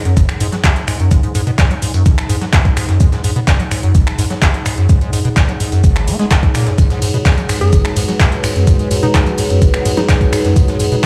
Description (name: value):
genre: acid house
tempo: 127 BPM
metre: 4/4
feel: straight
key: G# minor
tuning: A4 = 441 Hz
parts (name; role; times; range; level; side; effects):
- acid bass, square; riff; 0.0-11.1 s; G#1 to B3; -19 LUFS; equal; analog chorus, sidechain pumping
- warbly tape-like pad; texture; 0.0-11.1 s; D#4 to F#5; -27 LUFS; equal; chorus, built-in reverb, sidechain pumping
- electro analog drum machine; drums; 0.1-11.1 s; finger snaps, handclaps, hi-hat, ride cymbal; -23 LUFS; equal; overdrive
- breakbeat sampler-style drum kit; drums; 0.2-11.1 s; hi-hat, shaker, snare drum; -31 LUFS; equal; none
- electronic kick drum; drums; 0.2-11.1 s; none; -14 LUFS; equal; none
- dark analog pad; sustained chords; 6.8-11.1 s; G#3 to B4; -23 LUFS; equal; chorus, sidechain pumping
- tambourine; percussion; 6.8-11.0 s; none; -33 LUFS; equal; none
- hollow square pluck; melody; 7.6-10.6 s; D#4 to G#4; -25 LUFS; equal; chorus, vintage 12-bit sampler grit, tape echo
room: little or no reverb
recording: played on a big sound system in a bare room, stone room reverb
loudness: -14 LUFS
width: mono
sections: 0.0-11.1 A section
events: none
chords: 0.0 G#m7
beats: 0.17 0.64 | 1.11 1.59 2.06 2.53 | 3.00 3.48 3.95 4.42 | 4.89 5.37 5.84 6.31 | 6.78 7.26 7.73 8.20 | 8.67 9.15 9.62 10.09 | 10.56 11.04